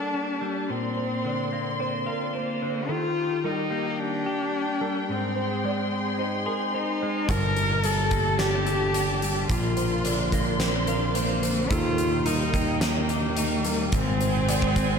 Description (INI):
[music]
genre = post-rock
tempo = 109 BPM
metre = 4/4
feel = straight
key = unclear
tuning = A4 = 435 Hz
[part]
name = dark cello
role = melody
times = 0.0-15.0 s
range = Bb3 to Bb4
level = -28 LUFS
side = left 2 dB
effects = diffuse ambient delay
[part]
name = dark symphonic string section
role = sustained chords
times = 0.0-15.0 s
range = Bb3 to C6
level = -33 LUFS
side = right 1 dB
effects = none
[part]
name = clean electric guitar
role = arpeggios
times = 0.0-15.0 s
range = G2 to A4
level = -30 LUFS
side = left 2 dB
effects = analog chorus, diffuse ambient delay
[part]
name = felt-muted upright piano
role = arpeggios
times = 1.0-15.0 s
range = A4 to A5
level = -35 LUFS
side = right 5 dB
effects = ensemble chorus, diffuse ambient delay
[part]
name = growling fingered electric bass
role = bass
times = 7.3-15.0 s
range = G1 to Eb2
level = -28 LUFS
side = right 1 dB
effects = overdrive
[part]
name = huge arena drum kit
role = drums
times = 7.3-14.9 s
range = hi-hat, kick drum, snare drum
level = -28 LUFS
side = equal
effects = none
[sound]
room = moderate plate reverb, RT60 1.9 s, small room ambience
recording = dreamy mix soaked in reverb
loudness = -23 LUFS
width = side -6 dB against mid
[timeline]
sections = 0.0-15.0 A section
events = none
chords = 0.0 Gmadd9; 0.7 Bbadd9; 2.9 Eb; 5.1 Ab; 7.3 Gmadd9; 9.5 Bbadd9; 11.7 Eb; 13.9 Ab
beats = 0.14 | 0.69 1.25 1.80 2.35 | 2.90 3.44 3.99 4.54 | 5.09 5.64 6.19 6.74 | 7.29 7.84 8.39 8.94 | 9.49 10.04 10.60 11.15 | 11.70 12.26 12.81 13.37 | 13.92 14.48